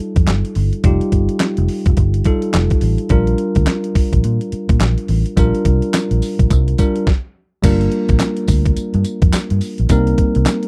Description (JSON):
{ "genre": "R&B, new jack swing", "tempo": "106 BPM", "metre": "4/4", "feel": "swing 61% on 16ths", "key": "G minor", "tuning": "A4 = 438 Hz", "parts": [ { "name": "bell-like tine electric piano", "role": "accompaniment", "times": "0.0-10.7 s", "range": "G3 to Bb4", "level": "-22 LUFS", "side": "equal", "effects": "none" }, { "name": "vintage muted fingered electric bass", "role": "bass", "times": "0.0-10.4 s", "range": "F1 to Bb2", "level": "-18 LUFS", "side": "equal", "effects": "none" }, { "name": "crisp 8-bit digital drum machine", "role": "drums", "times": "0.2-10.7 s", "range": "crash cymbal, handclaps, hi-hat, kick drum, snare drum, tambourine", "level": "-18 LUFS", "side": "equal", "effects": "overdrive" } ], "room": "little or no reverb", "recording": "dry, close 1970s-style studio recording", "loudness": "-16 LUFS", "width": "mono", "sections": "0.0-7.6 A section; 7.6-10.7 B section", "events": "stop 7.1-7.6", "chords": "0.0 F9; 3.1 Bb6; 7.6 Gm7; 9.9 Cm7", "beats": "0.28 | 0.84 1.41 1.97 2.54 | 3.11 3.67 4.24 4.80 | 5.37 5.94 6.50 7.07 | 7.63 8.20 8.77 9.33 | 9.90 10.46" }